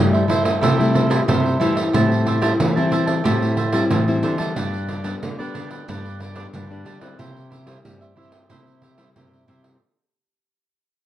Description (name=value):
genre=samba and choro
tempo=91 BPM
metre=4/4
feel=straight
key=C major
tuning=A4 = 440 Hz
part: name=nylon-string guitar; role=accompaniment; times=0.0-9.8 s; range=G2 to E4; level=-23 LUFS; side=left 3 dB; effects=none
part: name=nylon-string guitar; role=bass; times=0.0-9.8 s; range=G2 to G3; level=-22 LUFS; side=equal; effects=none
part: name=cavaquinho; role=accompaniment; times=0.1-9.8 s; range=D4 to A5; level=-24 LUFS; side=right 4 dB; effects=none
part: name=pandeiro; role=percussion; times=0.1-9.8 s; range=none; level=-24 LUFS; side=right 3 dB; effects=none
room=moderate studio reverb, RT60 0.5 s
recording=worn, warbling old tape, cassette tape, warbly pitch drift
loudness=-17 LUFS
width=side -12 dB against mid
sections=0.0-9.8 A section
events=fade-out 0.0-9.8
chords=0.0 C6; 1.9 Am7; 4.6 G; 7.2 C